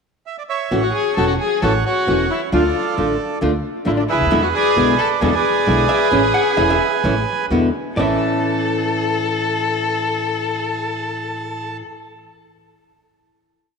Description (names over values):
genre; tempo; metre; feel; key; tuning
tango; 133 BPM; 4/4; rubato; A major; A4 = 441 Hz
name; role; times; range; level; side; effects
bandoneon; melody; 0.3-11.8 s; G#4 to A5; -21 LUFS; right 9 dB; slapback echo
nylon-string guitar; accompaniment; 0.7-11.8 s; A2 to F#4; -21 LUFS; equal; none
upright bass; bass; 0.7-8.2 s; E1 to E2; -24 LUFS; right 1 dB; transformer saturation
warm violin; second line; 0.8-11.8 s; D4 to A4; -22 LUFS; left 9 dB; none
archtop guitar, miked and amplified; second line; 5.9-11.8 s; E5 to F#5; -26 LUFS; right 2 dB; none
room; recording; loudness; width
wet echo chamber reverb, RT60 2.5 s; 1960s-style stereo with parts hard left and right; -16 LUFS; side -5 dB against mid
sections
0.0-0.7 pickup bar; 0.7-8.0 A section; 8.0-11.6 final chord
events
none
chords
0.0 N.C.; 0.7 A6; 2.5 Dm; 4.3 E7; 6.1 A; 7.5 E7; 8.0 A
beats
0.26 | 0.71 1.17 1.62 2.08 | 2.53 2.97 3.42 3.87 | 4.32 4.77 5.22 5.67 | 6.12 6.58 7.04 7.50 | 7.97 8.42 8.87 9.32 | 9.77 10.22 10.67 11.12